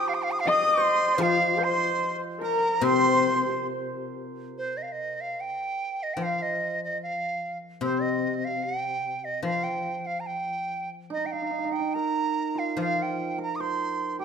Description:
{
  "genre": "chinese traditional, Chinese chamber ensemble",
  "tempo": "73 BPM",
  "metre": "2/4",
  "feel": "rubato",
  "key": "C yu mode",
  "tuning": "A4 = 436 Hz",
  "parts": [
    { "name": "bright large dizi", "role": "melody", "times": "0.0-14.2 s", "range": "C5 to Eb6", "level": "-27 LUFS", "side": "right 2 dB", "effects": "none" },
    { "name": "hammered dulcimer", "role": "second line", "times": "0.0-6.1, 11.1-14.2 s", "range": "C4 to Eb5", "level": "-31 LUFS", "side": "right 5 dB", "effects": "none" },
    { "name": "guzheng", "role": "accompaniment", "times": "0.0-14.2 s", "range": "C3 to F3", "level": "-30 LUFS", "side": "left 5 dB", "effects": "none" },
    { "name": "dark horsehead fiddle", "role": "second line", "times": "0.5-3.6 s", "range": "F4 to Eb5", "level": "-27 LUFS", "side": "left 5 dB", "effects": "none" }
  ],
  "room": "moderate recital hall reverb, RT60 1.6 s",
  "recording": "minimal, uncompressed stereo recording",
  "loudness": "-24 LUFS",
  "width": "side -7 dB against mid",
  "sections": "0.0-4.5 A section; 4.5-14.2 B section",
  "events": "none",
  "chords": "none"
}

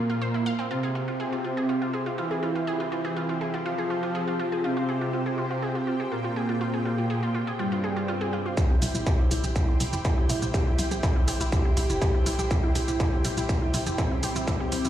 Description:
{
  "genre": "melodic techno",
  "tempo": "122 BPM",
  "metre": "4/4",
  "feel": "straight",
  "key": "F harmonic minor",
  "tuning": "A4 = 439 Hz",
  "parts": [
    { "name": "wide unison lead", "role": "melody", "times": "0.0-14.9 s", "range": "G3 to G4", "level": "-31 LUFS", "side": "right 1 dB", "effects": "wide subtle chorus, sidechain pumping, tape echo" },
    { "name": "soft supersaw", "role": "second line", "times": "0.0-8.5 s", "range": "G2 to F3", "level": "-31 LUFS", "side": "equal", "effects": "phaser, sidechain pumping, digital delay" },
    { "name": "lush unison pad", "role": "sustained chords", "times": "0.0-14.9 s", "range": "Bb3 to G5", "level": "-34 LUFS", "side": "equal", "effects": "chorus, phaser, sidechain pumping" },
    { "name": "wide unison pluck", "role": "arpeggios", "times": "0.0-14.9 s", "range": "C4 to F5", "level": "-33 LUFS", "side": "equal", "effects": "sidechain pumping, digital delay" },
    { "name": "swell", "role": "sound effects", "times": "7.8-8.6 s", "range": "none", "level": "-38 LUFS", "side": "equal", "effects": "none" },
    { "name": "electronic kick drum", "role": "drums", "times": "8.6-14.6 s", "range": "none", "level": "-24 LUFS", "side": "equal", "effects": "distortion, overdrive, studio reverb" },
    { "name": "electronic shaker and hi-hat", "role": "drums", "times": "8.6-14.9 s", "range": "none", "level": "-34 LUFS", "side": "right 2 dB", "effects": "overdrive, high-pass filter on perc, studio reverb, high-pass filter on hats" },
    { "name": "plucky analog bass", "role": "bass", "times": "8.8-14.9 s", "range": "G1 to C2", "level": "-29 LUFS", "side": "equal", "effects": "sidechain pumping" }
  ],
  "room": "light reverb, digital ambience",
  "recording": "played on a big sound system in a bare room, large studio reverb",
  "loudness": "-24 LUFS",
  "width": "side -11 dB against mid",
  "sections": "0.0-8.6 A section; 8.6-14.9 B section",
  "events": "filter sweep on synth arpeggio sound 0.0-8.6, 8.6-14.9; swell 7.8-8.6; build-up 8.6-14.9; filter sweep on analog synth lead 8.6-14.9",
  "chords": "0.0 Bb5; 0.7 Fmadd9; 8.6 C"
}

